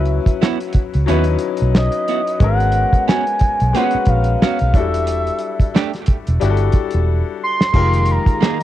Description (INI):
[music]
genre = R&B, neo-soul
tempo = 90 BPM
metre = 4/4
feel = swing 58% on 16ths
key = unclear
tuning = A4 = 440 Hz
[part]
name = expressive synth lead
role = melody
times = 0.0-8.6 s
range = Eb5 to C6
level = -20 LUFS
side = right 1 dB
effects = chorus, cassette tape
[part]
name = clear baby grand piano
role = accompaniment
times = 0.0-8.6 s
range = Gb3 to Cb5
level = -22 LUFS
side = left 10 dB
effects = cassette tape
[part]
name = vintage muted fingered electric bass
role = bass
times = 0.0-8.3 s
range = E1 to Eb2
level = -17 LUFS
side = equal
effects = none
[part]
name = cloth-damped thuddy drum kit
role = drums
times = 0.1-8.6 s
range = crash cymbal, handclaps, hi-hat, kick drum, snare drum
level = -16 LUFS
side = equal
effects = cassette tape
[part]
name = archtop guitar, miked and amplified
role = second line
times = 0.4-8.6 s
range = A3 to Ab4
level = -24 LUFS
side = right 12 dB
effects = cassette tape, analog delay
[part]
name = warm analog pad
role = sustained chords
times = 7.7-8.6 s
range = Eb3 to F4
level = -26 LUFS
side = right 1 dB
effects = chorus, cassette tape
[sound]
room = studio reverb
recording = home recording on cassette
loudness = -14 LUFS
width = side -13 dB against mid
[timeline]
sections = 0.0-8.6 A section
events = drum fill 7.1-7.7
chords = 0.0 Dbm11; 2.4 Abm11; 4.7 Em11; 7.7 Fm11